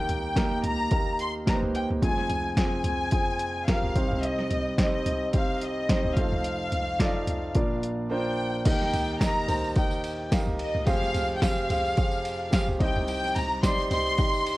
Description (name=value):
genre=piano-driven pop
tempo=108 BPM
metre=4/4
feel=swing 56% on 16ths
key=Eb major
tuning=A4 = 440 Hz
part: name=warm studio violin section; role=melody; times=0.0-14.6 s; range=Eb5 to C6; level=-30 LUFS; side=left 1 dB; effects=plate reverb
part: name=warm concert grand piano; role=accompaniment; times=0.0-14.6 s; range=F1 to F5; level=-29 LUFS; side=right 1 dB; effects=plate reverb
part: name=deep house drum kit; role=drums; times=0.1-14.6 s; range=crash cymbal, hi-hat, kick drum, ride cymbal, snare drum, toms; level=-26 LUFS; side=equal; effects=overdrive
part: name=tambourine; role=percussion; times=8.7-14.6 s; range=none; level=-46 LUFS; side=right 2 dB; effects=none
room=light reverb, studio ambience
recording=worn, warbling old tape, cassette tape, warbly pitch drift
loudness=-24 LUFS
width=side -18 dB against mid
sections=0.0-8.7 A section; 8.7-14.6 B section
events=none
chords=0.0 Eb; 2.0 Fmadd9; 4.0 Cm; 6.2 F7; 7.6 Bb; 8.7 Eb; 10.9 Fmadd9; 12.8 Cm